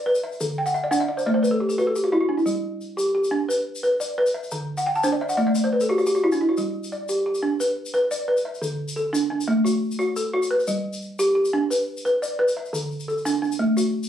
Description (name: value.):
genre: west african traditional, West African string and xylophone music.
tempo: 117 BPM (dotted quarters).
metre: 12/8.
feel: straight.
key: G major.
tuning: A4 = 440 Hz.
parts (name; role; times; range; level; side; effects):
balafon; arpeggios; 0.0-14.1 s; D3 to A5; -21 LUFS; equal; none.
tube shaker; percussion; 0.1-14.1 s; none; -35 LUFS; left 3 dB; none.
room: wet small room reverb, RT60 0.5 s.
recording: recorded on a phone in the room, studio reverb, compression.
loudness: -21 LUFS.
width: side -10 dB against mid.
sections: 0.0-14.1 A section.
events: balafon fill 0.6-2.5, 4.8-6.6.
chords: 0.4 D; 2.5 G; 4.5 D; 6.6 G; 8.6 D; 10.7 G; 12.7 D.